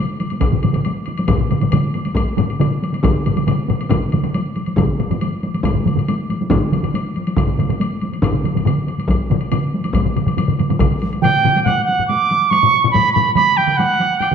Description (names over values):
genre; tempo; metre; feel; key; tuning
japanese traditional, taiko drum ensemble; 139 BPM; 4/4; straight; F# miyako bushi; A4 = 440 Hz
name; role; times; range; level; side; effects
taiko ensemble; percussion; 0.2-14.3 s; none; -22 LUFS; left 1 dB; none
woodblock; percussion; 0.2-14.3 s; none; -31 LUFS; left 4 dB; none
taiko ensemble; percussion; 0.4-13.3 s; none; -22 LUFS; left 6 dB; none
taiko ensemble; percussion; 0.4-14.3 s; none; -21 LUFS; right 5 dB; none
taiko ensemble; percussion; 0.4-10.9 s; none; -21 LUFS; left 1 dB; none
bright reedy wooden piccolo; melody; 11.2-14.3 s; F#5 to D6; -14 LUFS; right 5 dB; none
room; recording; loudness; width
wet recital hall reverb, RT60 1.7 s; dark, warm production; -15 LUFS; side -7 dB against mid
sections
0.0-11.7 A section; 11.7-14.3 B section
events
speeding up 0.0-14.3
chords
none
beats
0.42 0.85 | 1.29 1.73 2.17 2.60 | 3.04 3.47 3.91 4.34 | 4.78 5.21 5.64 6.08 | 6.51 6.94 7.37 7.80 | 8.23 8.66 9.09 9.52 | 9.95 10.38 10.81 11.23 | 11.66 12.09 12.51 12.94 | 13.36 13.79 14.21